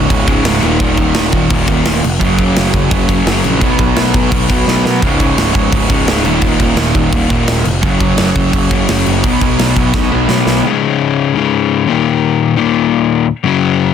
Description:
punk rock; 171 BPM; 4/4; straight; A4 = 439 Hz
crunchy overdriven guitar; riff; 0.0-13.9 s; Db2 to Cb4; -14 LUFS; left 9 dB
crunchy overdriven guitar; riff; 0.0-10.7 s; Db2 to Cb4; -20 LUFS; right 2 dB
overdriven electric guitar; riff; 0.0-10.6 s; Db2 to Cb4; -18 LUFS; right 13 dB
fuzz picked electric bass; bass; 0.0-10.6 s; Db1 to Cb3; -17 LUFS; right 1 dB; overdrive
big rock drum kit; drums; 0.1-10.5 s; crash cymbal, kick drum, snare drum; -15 LUFS; right 1 dB
little or no reverb; dense, heavily limited modern master; -10 LUFS; side -8 dB against mid
0.0-10.6 A section; 10.6-13.9 B section
drum fill 4.7-5.0, 9.9-10.6
0.0 Db5; 0.6 Eb5; 2.2 Gb5; 3.6 Cb5; 5.0 Db5; 6.3 Eb5; 7.8 Gb5; 9.2 Cb5; 10.6 Db5; 11.9 Eb5
0.11 0.46 | 0.81 1.16 1.51 1.86 | 2.21 2.56 2.91 3.26 | 3.61 3.96 4.32 4.67 | 5.02 5.37 5.72 6.08 | 6.43 6.78 7.13 7.48 | 7.83 8.19 8.54 8.89 | 9.24 9.59 9.94 10.29 | 10.64 10.99 11.34 11.69 | 12.04 12.39 12.74 13.09 | 13.44 13.79

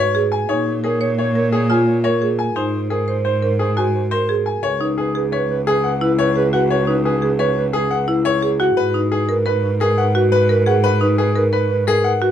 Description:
classical, minimalist pattern music; 174 BPM; 6/4; straight; A4 = 440 Hz
bright concert grand piano; melody; 0.0-12.3 s; G#4 to G#5; -21 LUFS; left 6 dB
mellow clarinet; second line; 0.0-12.3 s; B4 to C#5; -25 LUFS; right 3 dB
marimba with medium hard mallets; arpeggios; 0.0-12.3 s; D#4 to C#5; -19 LUFS; right 1 dB
clear cello; bass; 0.0-12.3 s; C#2 to A#2; -21 LUFS; right 1 dB
little or no reverb; dark, warm production; -15 LUFS; side -10 dB against mid
0.0-4.6 A section; 4.6-12.3 B section
0.5 A#m7; 2.6 G#; 4.6 C#7(no3); 8.8 G#madd9
0.15 | 0.49 0.84 1.18 1.53 1.87 2.22 | 2.56 2.91 3.25 3.60 3.94 4.29 | 4.63 4.98 5.32 5.67 6.01 6.36 | 6.70 7.04 7.39 7.73 8.08 8.42 | 8.77 9.11 9.46 9.80 10.15 10.49 | 10.84 11.18 11.53 11.87 12.22

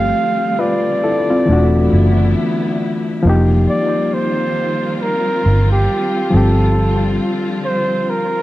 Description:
lo-fi hip hop; 68 BPM; 4/4; swing 59% on 16ths; A4 = 440 Hz
trumpet with bucket mute; melody; 0.0-8.4 s; G4 to F5; -19 LUFS; right 1 dB; low-pass filter, analog delay
barky reed electric piano; accompaniment; 0.0-8.4 s; E3 to B4; -18 LUFS; left 2 dB; overdrive, low-pass filter, analog delay
warm symphonic string section; sustained chords; 0.0-8.4 s; D3 to F4; -23 LUFS; equal; low-pass filter
vintage muted fingered electric bass; bass; 0.0-7.2 s; E1 to G1; -14 LUFS; right 1 dB
moderate spring reverb, RT60 1.1 s, studio ambience; echo-heavy mix, cassette tape; -13 LUFS; side -16 dB against mid
0.0-8.4 A section
0.0 G9sus4; 1.5 E9sus4; 3.2 F9sus4; 6.3 G9sus4
0.59 1.47 2.36 | 3.24 4.12 5.00 5.89 | 6.77 7.65

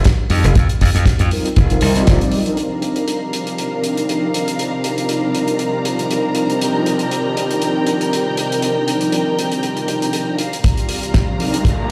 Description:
nu-disco, nu disco; 119 BPM; 4/4; swing 55% on 16ths; C minor; A4 = 440 Hz
glassy slap bass; bass; 0.0-2.2 s; F1 to F2; -17 LUFS; equal; tube saturation
damped 70s drum kit; drums; 0.0-11.8 s; hi-hat, snare drum; -26 LUFS; equal
kick drum; drums; 0.1-2.2, 10.6-11.8 s; -17 LUFS; equal
mellow synth brass; accompaniment; 0.3-11.6 s; F3 to D5; -22 LUFS; equal; chorus, vintage 12-bit sampler grit, tape echo
dark studio string section; sustained chords; 2.6-11.9 s; C3 to Bb5; -24 LUFS; equal; sidechain pumping, low-pass filter
riser; sound effects; 11.1-11.9 s; -30 LUFS; equal
light reverb, studio reverb; played on a big sound system in a bare room, stone room reverb; -17 LUFS; mono
0.0-2.6 A section; 2.6-10.6 B section; 10.6-11.9 C section
band accent 2.1; build-up 10.6-11.9; riser 11.1-11.9
0.0 F9sus4; 2.6 Cm11
0.05 | 0.56 1.06 1.57 2.07 | 2.57 3.08 3.58 4.09 | 4.59 5.09 5.60 6.10 | 6.61 7.11 7.62 8.12 | 8.62 9.13 9.63 10.14 | 10.64 11.15 11.65

